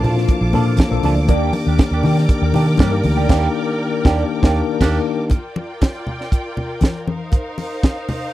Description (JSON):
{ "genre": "disco", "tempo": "119 BPM", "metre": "4/4", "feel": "straight", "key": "Bb major", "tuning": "A4 = 440 Hz", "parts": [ { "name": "mellow electric guitar", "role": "accompaniment", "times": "0.0-5.0 s", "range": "Bb3 to A4", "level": "-23 LUFS", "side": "right 7 dB", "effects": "wah" }, { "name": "tine electric piano", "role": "accompaniment", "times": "0.0-5.3 s", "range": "Eb3 to A4", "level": "-20 LUFS", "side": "left 5 dB", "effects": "medium stereo tremolo" }, { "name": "clear studio string section", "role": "sustained chords", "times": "0.0-8.3 s", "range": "Bb3 to D6", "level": "-27 LUFS", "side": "equal", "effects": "none" }, { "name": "vintage muted fingered electric bass", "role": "bass", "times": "0.0-5.0 s", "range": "Bb1 to Eb3", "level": "-17 LUFS", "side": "equal", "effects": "none" }, { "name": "tight funk drum kit", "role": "drums", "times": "0.0-8.2 s", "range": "crash cymbal, hi-hat, kick drum, snare drum", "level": "-15 LUFS", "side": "right 1 dB", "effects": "none" }, { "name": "congas", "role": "percussion", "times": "0.0-8.2 s", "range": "none", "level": "-25 LUFS", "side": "left 2 dB", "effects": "none" } ], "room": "little or no reverb", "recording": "dry, close 1970s-style studio recording", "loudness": "-15 LUFS", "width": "side -14 dB against mid", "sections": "0.0-5.3 A section; 5.3-8.3 B section", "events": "band accent 3.3-5.3", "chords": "0.0 Bbmaj7; 1.3 Ebmaj7; 5.3 Bb6; 7.1 F7sus4" }